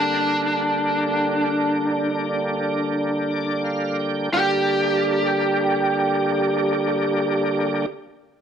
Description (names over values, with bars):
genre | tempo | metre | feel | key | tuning
blues | free time | none | none | G minor | A4 = 440 Hz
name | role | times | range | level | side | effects
lead guitar through a small cranked amp | melody | 0.0-7.9 s | D4 to G4 | -22 LUFS | equal | overdrive, plate reverb
bright tonewheel organ | accompaniment | 0.0-7.9 s | D3 to G5 | -22 LUFS | right 1 dB | slow rotary speaker, overdrive, chorus vibrato, plate reverb
room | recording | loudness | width
wet studio reverb, RT60 0.6 s | none | -19 LUFS | side -8 dB against mid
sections
0.0-4.3 A section; 4.3-7.1 B section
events
tonewheel organ fill 3.0-4.3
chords
0.0 Gm